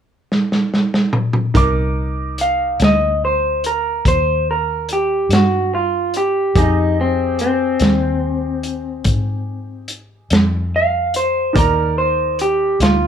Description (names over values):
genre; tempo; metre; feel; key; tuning
slow blues; 48 BPM (dotted quarters); 12/8; straight; C minor; A4 = 441 Hz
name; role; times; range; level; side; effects
vintage drum kit; drums; 0.3-13.0 s; hi-hat, kick drum, snare drum, toms; -16 LUFS; equal; none
clear upright piano; accompaniment; 1.5-13.1 s; Eb4 to D6; -24 LUFS; right 4 dB; none
vintage muted fingered electric bass; bass; 1.6-13.1 s; C2 to Ab2; -21 LUFS; equal; none
electric guitar through a small old amp; melody; 2.4-13.1 s; C4 to F5; -17 LUFS; equal; none
room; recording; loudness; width
light reverb; band playing live in one room; -15 LUFS; side -8 dB against mid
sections
0.0-1.6 A section; 1.6-13.1 B section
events
drum fill 0.3-1.6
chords
0.0 N.C.; 1.6 Cm7; 6.6 Fm7; 11.6 Cm7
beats
0.30 | 1.55 2.80 4.05 5.30 | 6.55 7.80 9.05 10.30 | 11.55 12.80